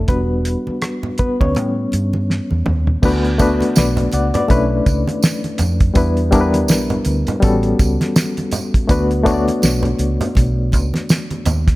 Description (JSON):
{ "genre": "lush 1970s-style soul", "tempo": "82 BPM", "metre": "4/4", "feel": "swing 58% on 16ths", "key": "D major", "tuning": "A4 = 440 Hz", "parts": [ { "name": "reed electric piano", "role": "accompaniment", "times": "0.0-11.8 s", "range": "G3 to F#5", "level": "-18 LUFS", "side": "left 2 dB", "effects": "overdrive, fast tremolo" }, { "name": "vintage muted fingered electric bass", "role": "bass", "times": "0.0-11.8 s", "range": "E1 to A2", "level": "-19 LUFS", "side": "equal", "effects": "none" }, { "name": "cloth-damped thuddy drum kit", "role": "drums", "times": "0.1-11.8 s", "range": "crash cymbal, hi-hat, kick drum, rim click, snare drum, toms", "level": "-17 LUFS", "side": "equal", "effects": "none" }, { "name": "congas", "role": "percussion", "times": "0.1-11.7 s", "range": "none", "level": "-26 LUFS", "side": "right 2 dB", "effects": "none" }, { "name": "tambourine", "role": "percussion", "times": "3.0-11.7 s", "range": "none", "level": "-30 LUFS", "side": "right 5 dB", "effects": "none" } ], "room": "light reverb, small room reverb", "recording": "none", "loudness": "-14 LUFS", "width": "side -18 dB against mid", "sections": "0.0-3.0 A section; 3.0-11.8 B section", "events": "reed electric piano solo 0.0-3.0; drum fill 2.3-3.0", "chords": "0.1 Em7; 1.6 A7; 3.0 D6; 4.5 Bm11; 6.0 Em7; 7.4 A13; 8.9 D6" }